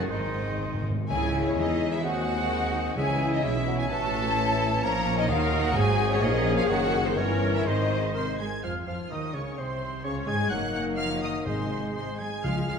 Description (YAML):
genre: quick classical-period movement for symphony orchestra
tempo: 127 BPM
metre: 2/4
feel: rubato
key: C# minor, Db major from 4.8 s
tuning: A4 = 440 Hz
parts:
  - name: clear oboe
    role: second line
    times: 0.0-12.8 s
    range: D#4 to Ab5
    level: -37 LUFS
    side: right 1 dB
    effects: none
  - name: clear studio violin section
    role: second line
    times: 0.0-12.8 s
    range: G#3 to Ab5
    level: -37 LUFS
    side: left 2 dB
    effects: none
  - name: dark clarinet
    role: second line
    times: 0.0-12.8 s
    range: C4 to C#5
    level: -38 LUFS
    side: left 1 dB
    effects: none
  - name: large flute ensemble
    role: second line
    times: 0.0-12.8 s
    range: C5 to Ab6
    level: -34 LUFS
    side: right 2 dB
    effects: none
  - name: clear studio viola section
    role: accompaniment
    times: 0.0-12.7 s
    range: D#3 to C5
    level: -34 LUFS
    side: left 2 dB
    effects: none
  - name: warm bassoon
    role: accompaniment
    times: 0.0-12.8 s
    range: C3 to G#3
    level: -35 LUFS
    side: right 2 dB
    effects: none
  - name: mellow French horn section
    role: sustained chords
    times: 0.0-12.8 s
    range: C3 to F4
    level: -33 LUFS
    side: left 5 dB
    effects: none
  - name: rich studio cello section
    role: bass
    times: 0.0-12.8 s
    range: Gb2 to Ab3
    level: -33 LUFS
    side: right 2 dB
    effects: none
  - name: warm studio double bass section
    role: bass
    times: 0.0-12.7 s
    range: Gb1 to Ab2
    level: -32 LUFS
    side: right 3 dB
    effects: none
  - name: rich studio violin section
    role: melody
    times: 0.1-12.8 s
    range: C5 to Ab6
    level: -34 LUFS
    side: left 4 dB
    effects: none
  - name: timpani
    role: percussion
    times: 0.1-3.6, 11.5-12.8 s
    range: G#2 to C#3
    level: -33 LUFS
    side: left 1 dB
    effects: none
room: wet scoring stage reverb, RT60 1.8 s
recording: none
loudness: -24 LUFS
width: side -6 dB against mid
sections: 0.0-1.1 A section; 1.1-8.6 B section; 8.6-12.8 C section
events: timpani fill 0.1-1.1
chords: 0.1 G#; 1.1 C#m; 2.0 G#7/D#; 3.0 C#m; 3.9 A; 4.8 Bbm; 5.3 Ebm; 5.8 Ab7; 6.2 Bbm; 6.7 Ebm7/Gb; 7.2 Gdim7; 7.7 Ab; 8.6 Db/F; 9.6 N.C.; 10.1 Db5; 10.5 Ebm/Gb; 11.5 Ab